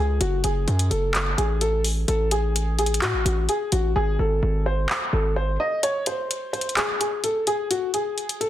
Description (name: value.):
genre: hip hop, trap.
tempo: 128 BPM.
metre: 4/4.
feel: half-time.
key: unclear.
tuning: A4 = 440 Hz.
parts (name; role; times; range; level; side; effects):
dark baby grand piano; melody; 0.0-8.5 s; F#4 to D#5; -25 LUFS; left 1 dB; low-pass filter.
hard-hitting 808-style bass; bass; 0.0-5.6 s; F#1 to A2; -23 LUFS; equal; none.
trap drum kit; drums; 0.2-8.5 s; handclaps, hi-hat; -26 LUFS; equal; none.
room: light reverb.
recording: dense, heavily limited modern master.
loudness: -21 LUFS.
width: side -12 dB against mid.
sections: 0.0-8.5 A section.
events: hi-hats muted 4.0-5.8; kick muted 5.8-8.5.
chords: 0.2 F#m; 2.1 F#madd9/A; 4.0 G#; 5.8 N.C..